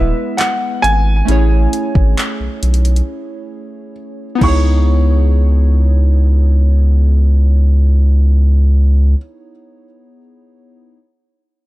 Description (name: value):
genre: contemporary R&B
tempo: 67 BPM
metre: 4/4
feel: straight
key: C# minor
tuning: A4 = 440 Hz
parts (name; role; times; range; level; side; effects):
- dark baby grand piano; melody; 0.0-9.2 s; E5 to C#6; -20 LUFS; equal; digital delay
- warm analog keys; accompaniment; 0.0-11.0 s; G#3 to C#5; -22 LUFS; equal; chorus
- saturated sub bass; bass; 0.0-9.2 s; D#1 to C#2; -10 LUFS; equal; none
- smooth R&B drum kit; drums; 0.4-4.6 s; crash cymbal, handclaps, hi-hat, kick drum; -17 LUFS; equal; none
room: digital ambience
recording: dark, warm production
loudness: -11 LUFS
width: side -18 dB against mid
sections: 0.0-4.9 A section; 4.9-8.4 B section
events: break 3.1-4.9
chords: 0.0 E; 1.3 Amaj7; 4.4 C#m9